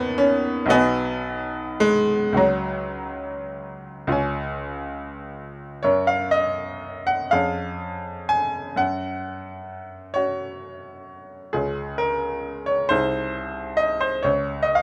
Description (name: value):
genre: classical, romantic nocturne for solo piano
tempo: 33-46 BPM (dotted quarters)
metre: 6/8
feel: rubato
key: F# major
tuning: A4 = 444 Hz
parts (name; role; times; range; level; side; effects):
- bright baby grand piano; solo; 0.0-14.8 s; B1 to A#5; -24 LUFS; equal; none
room: light reverb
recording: none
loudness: -24 LUFS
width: mono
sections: 0.0-5.8 A section; 5.8-14.8 B section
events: none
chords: 0.0 D#m; 0.7 G#m7/B; 2.4 F#/C#; 4.1 C#; 5.8 F#; 7.3 C#/E#; 8.8 F#5; 11.5 C#; 12.9 G#/B#; 14.2 N.C.